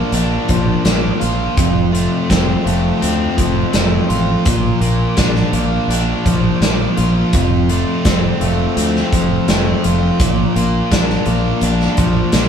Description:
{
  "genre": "classic rock",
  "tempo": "84 BPM",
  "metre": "4/4",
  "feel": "straight",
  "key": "unclear",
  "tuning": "A4 = 439 Hz",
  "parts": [
    { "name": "biting overdriven guitar", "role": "riff", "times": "0.0-12.5 s", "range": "F2 to F4", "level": "-20 LUFS", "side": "right 6 dB", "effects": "none" },
    { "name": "crunchy overdriven guitar", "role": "riff", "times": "0.0-12.5 s", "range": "F2 to F4", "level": "-19 LUFS", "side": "left 4 dB", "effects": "none" },
    { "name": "fingered electric bass", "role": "bass", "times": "0.1-12.5 s", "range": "F1 to D2", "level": "-19 LUFS", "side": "equal", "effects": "none" },
    { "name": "big rock drum kit", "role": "drums", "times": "0.1-12.5 s", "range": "hi-hat, kick drum, snare drum", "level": "-18 LUFS", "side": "right 1 dB", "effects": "none" }
  ],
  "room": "moderate stone room reverb, RT60 1.3 s",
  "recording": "band playing live in one room",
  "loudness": "-13 LUFS",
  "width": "side -8 dB against mid",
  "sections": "0.0-12.5 A section",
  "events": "none",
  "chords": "0.0 Bb; 1.6 F; 4.5 Bb; 7.3 F; 10.2 Bb"
}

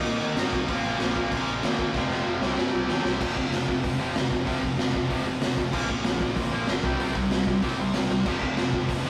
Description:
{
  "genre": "punk rock",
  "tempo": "190 BPM",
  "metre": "4/4",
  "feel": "straight",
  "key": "F major from 3.2 s",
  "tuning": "A4 = 435 Hz",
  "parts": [
    { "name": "high-gain distorted guitar", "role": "riff", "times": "0.0-9.1 s", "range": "F2 to F4", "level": "-36 LUFS", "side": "equal", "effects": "distortion" },
    { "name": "tight distorted guitar", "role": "riff", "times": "0.0-9.1 s", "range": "F2 to Eb4", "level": "-32 LUFS", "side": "equal", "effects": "distortion" },
    { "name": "tight distorted guitar", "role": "riff", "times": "0.0-9.1 s", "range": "F2 to Eb4", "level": "-35 LUFS", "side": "equal", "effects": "none" },
    { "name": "growling picked electric bass", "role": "bass", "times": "0.0-9.1 s", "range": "F1 to Bb2", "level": "-37 LUFS", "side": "equal", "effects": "overdrive" },
    { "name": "raw garage drum kit", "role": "drums", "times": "0.1-9.0 s", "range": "crash cymbal, hi-hat, kick drum, snare drum", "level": "-29 LUFS", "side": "equal", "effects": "none" }
  ],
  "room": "light reverb",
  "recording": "rough rehearsal-room recording, warm saturation",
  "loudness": "-26 LUFS",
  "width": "mono",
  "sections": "0.0-3.2 A section; 3.2-9.1 B section",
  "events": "drum fill 1.9-3.2, 8.1",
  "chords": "0.0 Eb; 0.7 Bb; 1.9 F; 2.4 C; 3.2 F; 5.7 Bb; 6.8 C; 8.3 F"
}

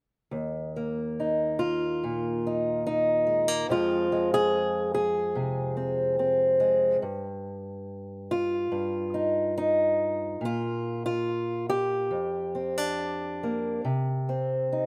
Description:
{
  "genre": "folk, solo fingerstyle acoustic guitar",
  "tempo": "71 BPM",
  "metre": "4/4",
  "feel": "rubato",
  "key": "Eb major",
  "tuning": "A4 = 440 Hz",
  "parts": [
    { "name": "fingerpicked acoustic archtop guitar", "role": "solo", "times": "0.3-14.9 s", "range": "Eb2 to Ab4", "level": "-28 LUFS", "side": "equal", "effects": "slapback echo" }
  ],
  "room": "little or no reverb",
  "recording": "recorded outdoors, with no room sound",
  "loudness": "-27 LUFS",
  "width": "mono",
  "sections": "0.3-14.9 A section",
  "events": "none",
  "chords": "0.3 Eb5; 3.7 Fm; 7.0 Eb/G; 10.4 Bb6; 13.9 Cm"
}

